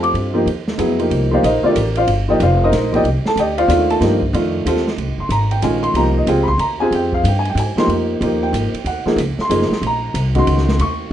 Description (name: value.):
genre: modal jazz.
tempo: 186 BPM.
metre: 3/4.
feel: swing 64% on 8ths.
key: C dorian, F minor from 5.0 s.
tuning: A4 = 440 Hz.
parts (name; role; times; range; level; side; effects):
warm upright piano; accompaniment; 0.0-11.1 s; Eb3 to D6; -16 LUFS; equal; none.
upright bass; bass; 0.0-11.1 s; F1 to Ab2; -19 LUFS; equal; none.
open jazz drum kit; drums; 0.0-10.9 s; hi-hat, kick drum, ride cymbal, snare drum; -25 LUFS; right 3 dB; none.
room: moderate small room reverb, RT60 0.5 s.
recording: nothing above 10.6 kHz.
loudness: -14 LUFS.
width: side -10 dB against mid.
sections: 0.0-5.0 A section; 5.0-11.1 A section.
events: none.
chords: 0.0 Cm11; 5.0 Fm11; 8.9 Ebm11.